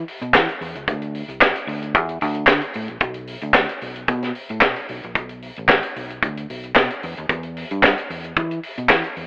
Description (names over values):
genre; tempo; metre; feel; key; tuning
disco; 112 BPM; 4/4; straight; unclear; A4 = 440 Hz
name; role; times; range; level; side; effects
fingered electric bass; bass; 0.0-9.3 s; A1 to E3; -27 LUFS; equal; none
tight funk drum kit; drums; 0.1-9.3 s; handclaps, hi-hat, kick drum, snare drum; -18 LUFS; equal; none
room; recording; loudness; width
light reverb; telephone sound; -18 LUFS; side -25 dB against mid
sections
0.0-9.3 A section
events
none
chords
none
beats
0.34 | 0.87 1.41 1.94 2.48 | 3.01 3.55 4.08 4.62 | 5.15 5.69 6.22 6.75 | 7.29 7.83 8.36 8.89